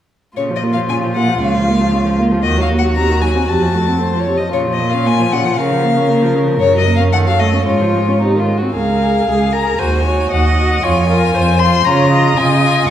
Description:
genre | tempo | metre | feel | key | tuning
quick classical-period movement for string quartet | 115 BPM | 2/4 | straight | Bb minor, Db major from 6.6 s | A4 = 439 Hz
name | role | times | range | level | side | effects
rich violin | melody | 0.4-12.9 s | Db5 to C6 | -18 LUFS | left 5 dB | none
warm violin | second line | 0.4-12.9 s | Eb4 to Eb5 | -20 LUFS | left 2 dB | none
rich viola | accompaniment | 0.4-12.9 s | C3 to Eb5 | -18 LUFS | right 2 dB | none
warm cello | bass | 0.4-12.8 s | Db2 to Db3 | -16 LUFS | right 2 dB | none
room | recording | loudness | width
wet recital hall reverb, RT60 1.6 s | heard from further back in the room | -12 LUFS | side -10 dB against mid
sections
0.4-8.7 A section; 8.7-12.9 B section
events
none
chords
0.4 Bbm; 1.4 Bbm/Db; 2.4 Ebm; 3.0 Cdim/Eb; 3.5 F; 4.5 Bbm; 5.6 Bbm/Db; 6.6 Gb; 7.1 Ebm7b5/Gb; 7.7 Db/Ab; 8.2 Ab; 8.7 Db; 9.8 Ab5/Eb; 10.8 Fmadd11; 11.9 Db

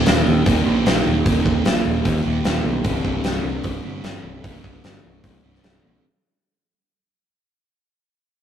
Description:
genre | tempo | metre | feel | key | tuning
hard rock | 151 BPM | 4/4 | straight | C minor | A4 = 440 Hz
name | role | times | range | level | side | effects
sludgy distorted guitar | riff | 0.0-6.0 s | C2 to Eb3 | -25 LUFS | left 2 dB | overdrive
sludgy distorted guitar | riff | 0.0-6.0 s | C2 to Eb3 | -24 LUFS | right 6 dB | overdrive
modern bright picked electric bass | bass | 0.1-6.0 s | C1 to Eb2 | -24 LUFS | equal | none
big rock drum kit | drums | 0.1-5.7 s | hi-hat, kick drum, snare drum | -21 LUFS | equal | none
room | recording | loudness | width
moderate studio reverb, RT60 0.6 s | rough rehearsal-room recording, tube saturation | -17 LUFS | side -9 dB against mid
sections
0.0-6.0 A section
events
fade-out 0.0-6.0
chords
0.0 Eb5; 2.9 C5

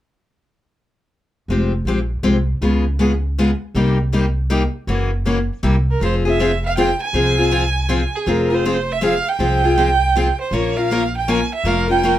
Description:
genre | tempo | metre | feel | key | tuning
acoustic string swing (jazz manouche) | 160 BPM | 3/4 | swing 63% on 8ths | F minor, F harmonic minor from 6.0 s | A4 = 440 Hz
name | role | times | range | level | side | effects
picked steel-string acoustic guitar | accompaniment | 1.5-12.2 s | C3 to Bb4 | -18 LUFS | left 3 dB | none
upright bass | bass | 1.5-12.2 s | F1 to Db2 | -20 LUFS | equal | none
warm violin | melody | 5.9-12.2 s | Ab4 to Ab5 | -20 LUFS | right 5 dB | none
room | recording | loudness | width
light reverb | none | -16 LUFS | side -12 dB against mid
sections
1.5-6.0 A section; 6.0-12.2 B section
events
none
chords
1.5 Fmadd9; 2.6 Db7; 3.8 Cm7; 4.9 Gb7; 5.6 C7; 6.0 Fm; 10.5 Bbm

